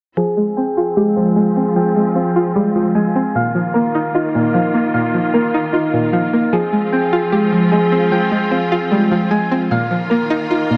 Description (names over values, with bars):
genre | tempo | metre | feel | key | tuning
hip hop | 151 BPM | 4/4 | half-time | F minor | A4 = 442 Hz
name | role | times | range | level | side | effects
string-like resonator pluck | accompaniment | 0.2-10.8 s | Bb2 to G4 | -20 LUFS | equal | chorus, low-pass filter
bright symphonic string section | sustained chords | 0.2-10.8 s | Eb3 to F4 | -26 LUFS | equal | low-pass filter
soft electric-piano-like synth keys | arpeggios | 0.2-10.8 s | F3 to Ab5 | -19 LUFS | equal | chorus, low-pass filter, tape echo
room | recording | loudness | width
moderate plate reverb, RT60 3.1 s | dark, warm production | -16 LUFS | mono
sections
0.2-10.8 A section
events
filter sweep 0.2-10.8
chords
0.2 Fmadd9; 3.4 Bbsus4; 6.5 Fmadd9; 9.7 Bbsus4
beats
| 0.17 0.57 0.97 1.37 | 1.76 2.16 2.56 2.96 | 3.35 3.75 4.15 4.54 | 4.94 5.34 5.74 6.13 | 6.53 6.93 7.33 7.72 | 8.12 8.52 8.92 9.31 | 9.71 10.11 10.51